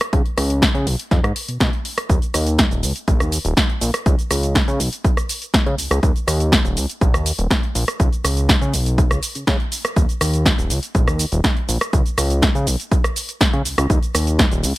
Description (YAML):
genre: filtered disco house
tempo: 122 BPM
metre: 4/4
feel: straight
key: unclear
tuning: A4 = 440 Hz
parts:
  - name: house drum kit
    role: drums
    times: 0.0-14.7 s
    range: cabasa, hi-hat, rim click, snare drum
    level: -20 LUFS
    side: equal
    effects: sidechain pumping on hats, sidechain pumping on perc
  - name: fat analog bass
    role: bass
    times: 0.1-14.7 s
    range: Eb1 to Db3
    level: -20 LUFS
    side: equal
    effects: sidechain pumping, low-pass filter
  - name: electronic kick drum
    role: drums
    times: 0.1-14.5 s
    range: none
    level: -18 LUFS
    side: equal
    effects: none
room: digital ambience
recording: none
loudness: -16 LUFS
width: side -18 dB against mid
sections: 0.0-14.8 A section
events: none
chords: none